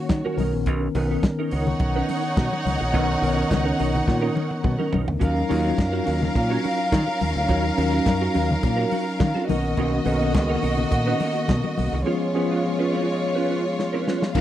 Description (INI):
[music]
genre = disco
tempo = 105 BPM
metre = 4/4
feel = straight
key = unclear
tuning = A4 = 440 Hz
[part]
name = clear studio string section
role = second line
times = 0.0-14.4 s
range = Ab3 to F#5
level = -26 LUFS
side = equal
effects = none
[part]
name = mellow tine electric piano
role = accompaniment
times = 0.0-14.4 s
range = Eb3 to A#4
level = -26 LUFS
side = left 3 dB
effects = medium stereo tremolo
[part]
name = semi-hollow electric guitar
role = accompaniment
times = 0.1-14.4 s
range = Db4 to Db5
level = -29 LUFS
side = right 5 dB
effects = ensemble chorus
[part]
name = modern bright fingered electric bass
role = bass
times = 0.1-14.4 s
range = A#1 to Eb3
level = -25 LUFS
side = equal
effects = none
[part]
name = warm soul drum kit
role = drums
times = 0.1-14.4 s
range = crash cymbal, hi-hat, kick drum, snare drum, toms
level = -23 LUFS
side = equal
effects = none
[part]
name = congas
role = percussion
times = 0.1-11.9 s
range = none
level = -29 LUFS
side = left 5 dB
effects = none
[sound]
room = light reverb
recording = dry, close 1970s-style studio recording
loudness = -20 LUFS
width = side -12 dB against mid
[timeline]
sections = 0.0-14.3 A section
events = drum fill 4.1-5.2, 13.8-14.3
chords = 0.4 Bmaj9; 5.2 Ebm7; 9.5 Bmaj9; 12.1 Db7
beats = 0.10 | 0.67 1.24 1.81 2.38 | 2.94 3.51 4.08 4.65 | 5.22 5.79 6.36 6.92 | 7.50 8.06 8.64 9.21 | 9.78 10.35 10.92 11.49 | 12.06 12.63 13.21 13.78 | 14.35